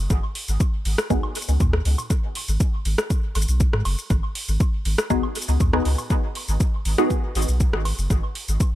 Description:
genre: dub techno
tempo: 120 BPM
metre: 4/4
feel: straight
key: G# minor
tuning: A4 = 441 Hz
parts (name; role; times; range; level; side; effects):
- soft dub sub bass; bass; 0.0-8.6 s; F#1 to G#2; -22 LUFS; equal; sidechain pumping
- deep house drum kit; drums; 0.1-8.7 s; hi-hat, rim click, shaker; -28 LUFS; equal; overdrive, dub echo
- electronic kick drum; drums; 0.1-8.7 s; none; -21 LUFS; equal; overdrive
- filtered dub chord stab; stabs; 1.1-1.3, 5.1-7.2 s; B3 to G#4; -26 LUFS; left 1 dB; phaser, sidechain pumping, dub echo
- electronic woodblock and toms; percussion; 1.2-8.0 s; none; -37 LUFS; right 1 dB; sidechain pumping on perc, sidechain pumping on toms, dub echo
room: little or no reverb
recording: echo-heavy mix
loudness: -20 LUFS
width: side -14 dB against mid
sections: 0.0-8.8 A section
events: none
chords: 0.0 G#m7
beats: | 0.10 0.60 1.10 1.60 | 2.10 2.60 3.10 3.60 | 4.10 4.60 5.10 5.60 | 6.10 6.60 7.10 7.60 | 8.10 8.60

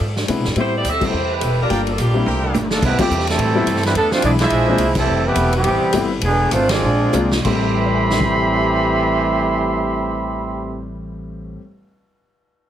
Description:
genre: jazz, big band swing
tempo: 182-214 BPM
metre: 4/4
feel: swing 59% on 8ths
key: A minor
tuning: A4 = 440 Hz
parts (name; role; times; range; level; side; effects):
- mellow saxophone section; melody; 0.0-2.7 s; F3 to E5; -22 LUFS; equal; none
- upright bass; bass; 0.0-11.5 s; E1 to C3; -22 LUFS; equal; none
- swinging big-band drum kit; drums; 0.2-8.3 s; crash cymbal, hi-hat, kick drum, ride cymbal, snare drum, toms; -23 LUFS; right 1 dB; none
- warm grand piano; accompaniment; 0.3-11.8 s; A2 to B6; -23 LUFS; left 3 dB; none
- brilliant trumpet section; stabs; 1.7-2.7 s; Bb4 to G5; -27 LUFS; right 1 dB; none
- bright trombone section; second line; 2.0-10.9 s; A2 to E4; -22 LUFS; right 2 dB; none
- mellow trumpet section; melody; 2.7-10.9 s; G3 to C6; -19 LUFS; right 1 dB; none
room: moderate large studio reverb, RT60 0.9 s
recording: heavily compressed radio sound, multiband compression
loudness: -15 LUFS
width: side -10 dB against mid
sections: 0.0-2.8 A section; 2.8-7.5 B section; 7.5-10.1 C section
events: band accent 1.0, 3.0, 4.9, 6.7; drum fill 2.3-2.8, 7.1-7.5; slowing down 5.1-7.5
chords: 0.0 E7b13; 0.6 Am7; 1.7 Gm7; 2.3 C7; 2.8 Fmaj9; 3.4 Am9; 4.0 E7; 4.5 Bb9; 5.1 Fmaj9; 5.6 Am9; 6.2 E7; 6.8 Bb9; 7.5 Am9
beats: 0.00 0.28 | 0.57 0.85 1.13 1.41 | 1.70 1.98 2.26 2.54 | 2.83 3.11 3.39 3.67 | 3.95 4.23 4.51 4.79 | 5.07 5.35 5.64 5.92 | 6.22 6.51 6.82 7.13 | 7.46 7.79 8.12 8.45 | 8.77 9.10 9.43 9.76

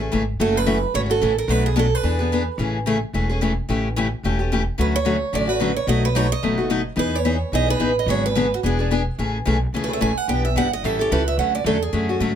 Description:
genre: acoustic string swing (jazz manouche)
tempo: 218 BPM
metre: 4/4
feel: swing 56% on 8ths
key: A major from 9.2 s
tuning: A4 = 440 Hz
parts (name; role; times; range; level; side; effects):
- picked steel-string acoustic guitar; accompaniment; 0.0-12.3 s; B2 to A4; -22 LUFS; left 3 dB; none
- upright bass; bass; 0.0-12.3 s; E1 to G#2; -24 LUFS; equal; none
- picked steel-string acoustic guitar; melody; 0.4-2.5, 4.8-12.2 s; F#4 to G#5; -23 LUFS; right 6 dB; slapback echo, plate reverb
room: light reverb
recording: none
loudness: -18 LUFS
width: side -9 dB against mid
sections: 0.4-9.2 A section; 9.2-12.4 B section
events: steel-string acoustic guitar solo 9.2-12.4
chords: 0.4 F#m7; 1.5 Bm7; 2.0 E7; 2.6 Amaj7; 3.7 A7; 4.8 Dmaj7; 5.9 B7; 7.0 Emaj7; 8.1 G#m7b5; 8.6 E7; 9.2 Amaj7; 10.3 Em7; 10.8 A7; 11.4 Dmaj7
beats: 0.12 | 0.39 0.66 0.94 1.21 | 1.49 1.76 2.04 2.31 | 2.58 2.86 3.13 3.41 | 3.68 3.96 4.23 4.51 | 4.78 5.06 5.33 5.61 | 5.88 6.16 6.43 6.70 | 6.98 7.25 7.53 7.80 | 8.08 8.35 8.63 8.90 | 9.18 9.45 9.73 10.01 | 10.28 10.56 10.83 11.11 | 11.38 11.66 11.93 12.21

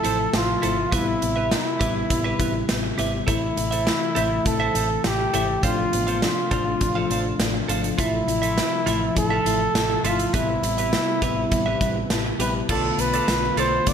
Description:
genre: 1980s-style pop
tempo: 102 BPM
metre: 4/4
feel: straight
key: unclear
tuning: A4 = 440 Hz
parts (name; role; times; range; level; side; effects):
- breathy flugelhorn; melody; 0.0-13.9 s; E4 to D5; -25 LUFS; equal; digital delay
- FM electric piano with auto-pan; accompaniment; 0.0-13.9 s; C3 to A5; -27 LUFS; left 4 dB; none
- ensemble organ-string; sustained chords; 0.0-13.9 s; C3 to E5; -34 LUFS; equal; none
- direct-recorded clean electric guitar; riff; 0.0-13.9 s; E4 to F5; -30 LUFS; right 5 dB; tube saturation, lush chorus, digital delay
- vintage muted fingered electric bass; bass; 0.0-13.9 s; G#1 to B1; -29 LUFS; equal; none
- big rock drum kit; drums; 0.0-13.9 s; crash cymbal, hi-hat, kick drum, snare drum; -26 LUFS; right 1 dB; none
room: wet plate reverb, RT60 1.8 s, small room ambience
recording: bright 1980s-style digital production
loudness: -20 LUFS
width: side -8 dB against mid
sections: 0.0-12.7 A section; 12.7-13.9 B section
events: FM electric piano fill 11.8-12.7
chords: 0.0 Fmaj7/A; 0.9 Cmaj7/A; 3.3 Am; 5.6 Dm7/A; 8.0 Fmaj7/A; 10.3 Cmaj7/A; 12.7 Bm7b5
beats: 0.34 | 0.93 1.52 2.10 2.69 | 3.28 3.87 4.46 5.04 | 5.63 6.22 6.81 7.40 | 7.99 8.57 9.16 9.75 | 10.34 10.93 11.52 12.10 | 12.69 13.28 13.87

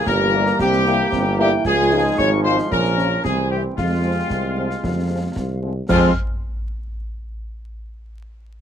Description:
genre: military-style march for wind band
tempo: 113 BPM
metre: 2/4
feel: straight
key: F minor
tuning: A4 = 440 Hz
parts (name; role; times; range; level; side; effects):
- mellow trumpet section; melody; 0.0-6.1 s; F4 to Db5; -26 LUFS; left 2 dB; none
- clear woodwind section; second line; 0.0-6.1 s; F4 to F5; -25 LUFS; left 2 dB; none
- mellow euphonium; second line; 0.0-5.6 s; G3 to F4; -25 LUFS; right 3 dB; none
- mellow wooden piccolo; second line; 0.0-6.2 s; F5 to F6; -26 LUFS; left 5 dB; none
- warm trombone section; sustained chords; 0.0-6.1 s; E3 to Db4; -27 LUFS; right 2 dB; none
- warm tuba; bass; 0.1-6.1 s; G1 to F2; -21 LUFS; right 1 dB; none
- concert snare drum, concert bass drum and clash cymbals; drums; 0.1-6.2 s; none; -29 LUFS; equal; none
- mellow French horn section; accompaniment; 0.3-6.1 s; E3 to F4; -23 LUFS; left 2 dB; none
room: light reverb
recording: close, detailed microphones, vinyl crackle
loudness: -17 LUFS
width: side -9 dB against mid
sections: 0.0-5.9 A section; 5.9-7.0 B section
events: none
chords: 0.0 C7; 1.7 Db; 2.7 Bbm; 3.2 C; 3.8 Fm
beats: 0.07 | 0.60 1.13 | 1.66 2.19 | 2.72 3.25 | 3.78 4.31 | 4.84 5.37 | 5.89

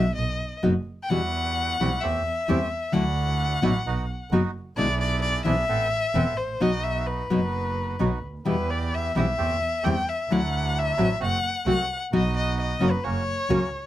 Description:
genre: tango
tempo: 131 BPM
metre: 4/4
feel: rubato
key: unclear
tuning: A4 = 439 Hz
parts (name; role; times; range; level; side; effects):
- warm violin; second line; 0.0-13.9 s; B4 to G5; -27 LUFS; left 3 dB; none
- nylon-string guitar; accompaniment; 0.0-13.6 s; B2 to F#4; -23 LUFS; left 2 dB; none
- dark double bass; bass; 0.0-13.7 s; E1 to E2; -28 LUFS; right 2 dB; none
- bandoneon; stabs; 1.1-13.7 s; F#3 to A4; -33 LUFS; right 7 dB; none
room: light reverb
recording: close, detailed microphones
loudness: -22 LUFS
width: side -13 dB against mid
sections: 0.0-13.9 A section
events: violin solo 0.0-13.9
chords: 0.2 B; 1.1 Emadd9; 2.0 Am7/E; 2.9 Dadd9; 3.9 B; 4.8 E7/B; 5.7 Amadd9; 6.6 B; 8.5 Em; 9.4 Am7/E; 10.3 Dadd9; 11.2 F#dim; 12.1 B; 13.0 F#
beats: 0.18 0.64 | 1.11 1.57 2.03 2.49 | 2.95 3.40 3.86 4.32 | 4.77 5.23 5.69 6.15 | 6.61 7.07 7.53 8.00 | 8.46 8.92 9.38 9.84 | 10.30 10.75 11.21 11.67 | 12.12 12.58 13.04 13.50

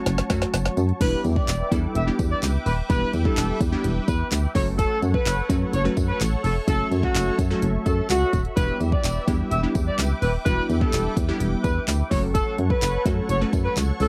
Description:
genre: dance-pop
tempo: 127 BPM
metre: 4/4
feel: straight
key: E dorian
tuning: A4 = 435 Hz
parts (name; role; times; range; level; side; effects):
- glassy wavetable pluck; accompaniment; 0.0-13.9 s; F#3 to B4; -31 LUFS; equal; chorus, sidechain pumping
- sweeping resonant pad; sustained chords; 0.0-14.1 s; F#4 to D6; -36 LUFS; equal; chorus, sidechain pumping
- solid FM bass; bass; 0.1-14.1 s; D#1 to F#2; -26 LUFS; equal; sidechain pumping
- deep house drum kit; drums; 0.1-14.1 s; crash cymbal, handclaps, hi-hat, kick drum, snare drum; -27 LUFS; equal; none
- tambourine; percussion; 0.1-14.1 s; none; -44 LUFS; equal; none
- warm horn section; melody; 1.0-14.1 s; F#4 to E5; -29 LUFS; equal; sidechain pumping, tape echo
room: little or no reverb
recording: dry, close 1970s-style studio recording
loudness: -23 LUFS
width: mono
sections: 0.0-1.0 A section; 1.0-14.1 B section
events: build-up 0.0-1.0; drum fill 0.0-1.0; drop 1.0-14.1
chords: 0.0 F#m; 1.0 Em7; 4.6 F#m; 8.6 Em7; 12.1 F#m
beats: 0.06 0.54 | 1.01 1.48 1.95 2.43 | 2.90 3.37 3.84 4.32 | 4.79 5.26 5.73 6.21 | 6.68 7.15 7.62 8.10 | 8.57 9.04 9.51 9.98 | 10.46 10.93 11.40 11.88 | 12.35 12.82 13.29 13.77

